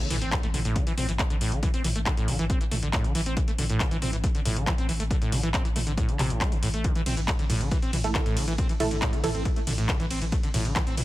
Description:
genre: driving peak-time techno.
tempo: 138 BPM.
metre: 4/4.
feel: straight.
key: A minor.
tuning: A4 = 441 Hz.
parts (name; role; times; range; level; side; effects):
acid bass, saw; riff; 0.0-11.0 s; A2 to C4; -30 LUFS; equal; lush chorus, sidechain pumping, tape echo.
techno drum kit; drums; 0.0-11.0 s; handclaps, hi-hat, ride cymbal, toms; -30 LUFS; equal; sidechain pumping on hats, sidechain pumping on toms, sidechain pumping on cymbals.
impact; sound effects; 0.0-1.6 s; none; -41 LUFS; left 1 dB; none.
saturated sub bass; bass; 0.1-11.0 s; A1; -31 LUFS; equal; tube saturation, sidechain pumping, low-pass filter.
electronic kick drum; drums; 0.3-10.8 s; none; -27 LUFS; equal; none.
filtered dub chord stab; stabs; 8.0-9.3 s; A3 to A4; -32 LUFS; right 4 dB; chorus, cassette tape, sidechain pumping, tape echo.
room: little or no reverb.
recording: none.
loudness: -24 LUFS.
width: side -16 dB against mid.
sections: 0.0-11.0 A section.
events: impact 0.0-1.6.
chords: 0.0 A5.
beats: 0.32 0.76 1.19 | 1.63 2.06 2.50 2.93 | 3.37 3.80 4.24 4.67 | 5.11 5.54 5.97 6.41 | 6.84 7.28 7.71 8.15 | 8.58 9.02 9.45 9.89 | 10.32 10.76.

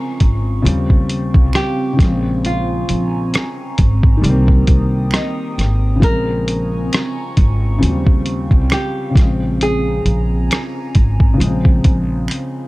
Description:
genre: lo-fi hip hop.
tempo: 67 BPM.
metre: 4/4.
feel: swing 56% on 16ths.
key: Bb dorian.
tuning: A4 = 439 Hz.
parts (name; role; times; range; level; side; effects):
flamenco guitar; melody; 0.0-12.5 s; Eb4 to Bb4; -23 LUFS; equal; low-pass filter.
felt-muted upright piano; accompaniment; 0.0-12.7 s; Db3 to C4; -21 LUFS; left 2 dB; cassette tape, low-pass filter.
dark analog pad; sustained chords; 0.0-12.7 s; C4 to Eb6; -27 LUFS; right 3 dB; chorus, phaser, low-pass filter.
upright bass; bass; 0.2-12.3 s; Ab1 to Eb2; -17 LUFS; equal; none.
lo-fi sampler-style drum kit; drums; 0.2-12.5 s; hi-hat, kick drum, rim click; -13 LUFS; equal; vintage 12-bit sampler grit.
finger snap; percussion; 1.5-12.5 s; none; -31 LUFS; right 5 dB; none.
room: small room ambience.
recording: cassette tape.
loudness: -13 LUFS.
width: side -20 dB against mid.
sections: 0.0-12.7 A section.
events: drum fill 12.3-12.7.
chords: 0.0 Bbm9; 0.7 Eb13; 2.0 Bbm9; 4.2 Cm7; 6.0 Bbm9; 7.8 Eb13; 9.2 Bbm9.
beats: 0.65 1.55 | 2.44 3.34 4.23 5.13 | 6.02 6.92 7.82 8.71 | 9.61 10.50 11.40 12.29.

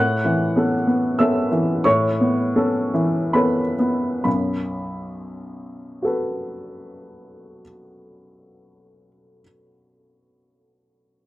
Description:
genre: neoclassical minimalist piano.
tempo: 65-99 BPM.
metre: 3/4.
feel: rubato.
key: unclear.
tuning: A4 = 442 Hz.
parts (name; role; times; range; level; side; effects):
warm upright piano; solo; 0.0-11.3 s; B1 to F#6; -19 LUFS; equal; none.
room: small room ambience.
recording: dry, close 1970s-style studio recording.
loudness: -18 LUFS.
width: side -16 dB against mid.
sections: 0.0-4.2 A section; 4.2-9.6 B section.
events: slowing down 0.0-4.2.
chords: 0.0 Aadd9; 4.2 B5.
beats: 0.55 1.19 | 1.84 2.55 3.35 | 4.24 5.14 6.03 | 6.92 7.82 8.71.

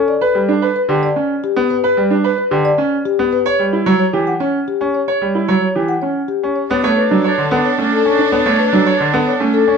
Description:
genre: classical, minimalist pattern music.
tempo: 111 BPM.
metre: 3/4.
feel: straight.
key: unclear.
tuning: A4 = 443 Hz.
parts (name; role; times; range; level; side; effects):
bright concert grand piano; accompaniment; 0.0-9.8 s; D3 to C#4; -17 LUFS; right 1 dB; none.
marimba with medium mallets; melody; 0.1-9.7 s; G4 to F#5; -18 LUFS; left 8 dB; none.
bright concert grand piano; arpeggios; 0.2-9.6 s; C#4 to C#5; -18 LUFS; right 6 dB; none.
clear oboe; second line; 6.7-9.7 s; D4; -21 LUFS; right 6 dB; none.
clear studio string section; sustained chords; 6.7-9.8 s; D4 to A4; -23 LUFS; right 1 dB; none.
room: moderate large studio reverb, RT60 0.9 s.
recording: dark, warm production.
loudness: -13 LUFS.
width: side -6 dB against mid.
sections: 0.0-6.7 A section; 6.7-9.8 A section.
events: none.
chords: 0.2 G; 3.5 Em6; 6.7 Bm7.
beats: | 0.21 0.76 1.30 | 1.84 2.38 2.92 | 3.46 4.00 4.54 | 5.08 5.62 6.16 | 6.70 7.24 7.78 | 8.32 8.86 9.40.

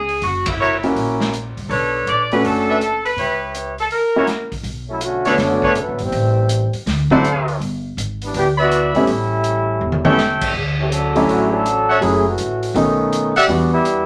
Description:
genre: jazz, big band swing.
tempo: 163 BPM.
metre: 4/4.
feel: swing 64% on 8ths.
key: B minor.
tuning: A4 = 437 Hz.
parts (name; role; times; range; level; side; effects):
clear saxophone section; melody; 0.0-4.5 s; E4 to D5; -22 LUFS; equal; none.
upright bass; bass; 0.0-14.1 s; E1 to E2; -26 LUFS; equal; none.
swinging big-band drum kit; drums; 0.1-14.0 s; crash cymbal, hi-hat, kick drum, ride cymbal, snare drum, toms; -29 LUFS; equal; none.
clear trumpet section; stabs; 0.6-13.4 s; D4 to B5; -20 LUFS; equal; none.
clear concert grand piano; accompaniment; 0.8-13.7 s; D3 to C#5; -19 LUFS; equal; none.
mellow trombone section; second line; 4.9-14.1 s; D3 to A4; -22 LUFS; equal; none.
room: wet studio reverb, RT60 0.5 s.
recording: none.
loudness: -18 LUFS.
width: mono.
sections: 0.0-4.7 A section; 4.7-14.1 B section.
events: band accent 0.4; trombone section solo 4.7-14.1; drum fill 9.8-10.2.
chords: 0.2 F#7; 1.7 Bm9; 3.2 C#m7b5; 3.9 F#7; 4.7 Bm9; 6.1 Am7; 6.9 D7; 7.6 G6; 9.1 A7; 10.5 Dmaj7; 12.0 F#m7; 12.8 B7; 13.5 Em9.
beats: | 0.22 0.59 0.96 1.33 | 1.70 2.07 2.44 2.81 | 3.18 3.55 3.92 4.29 | 4.66 5.02 5.39 5.76 | 6.13 6.50 6.87 7.23 | 7.60 7.97 8.34 8.71 | 9.07 9.44 9.81 10.18 | 10.54 10.91 11.28 11.65 | 12.02 12.38 12.75 13.12 | 13.48 13.85.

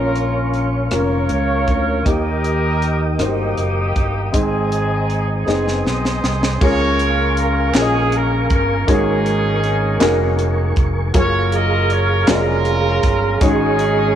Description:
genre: slow gospel.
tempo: 53 BPM (dotted quarters).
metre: 6/8.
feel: straight.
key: Db major.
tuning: A4 = 440 Hz.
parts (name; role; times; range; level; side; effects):
clear horn section; melody; 0.0-14.2 s; Bb3 to Eb5; -21 LUFS; right 1 dB; none.
warm upright piano; accompaniment; 0.0-14.2 s; Ab2 to Eb5; -21 LUFS; left 2 dB; none.
mellow tonewheel organ; sustained chords; 0.0-14.2 s; Ab4 to Eb6; -24 LUFS; right 4 dB; fast rotary speaker, chorus vibrato.
modern bright fingered electric bass; bass; 0.0-14.2 s; F1 to Eb2; -20 LUFS; equal; none.
tight funk drum kit; drums; 0.2-14.0 s; crash cymbal, hi-hat, kick drum, rim click, snare drum; -20 LUFS; equal; none.
group handclap; percussion; 7.7-12.6 s; none; -29 LUFS; right 5 dB; none.
room: light reverb.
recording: worn, warbling old tape, cassette tape, warbly pitch drift.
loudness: -15 LUFS.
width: side -10 dB against mid.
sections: 0.0-6.6 A section; 6.6-14.2 B section.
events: drum fill 5.5-6.6.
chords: 0.0 Bbm; 2.1 Eb; 4.3 Ab; 6.6 Db6; 8.9 Ab9sus4; 11.1 Gbmaj9; 13.4 Ab7sus4.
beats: 0.92 | 2.06 3.20 | 4.34 5.47 | 6.61 7.74 | 8.88 10.01 | 11.15 12.28 | 13.41.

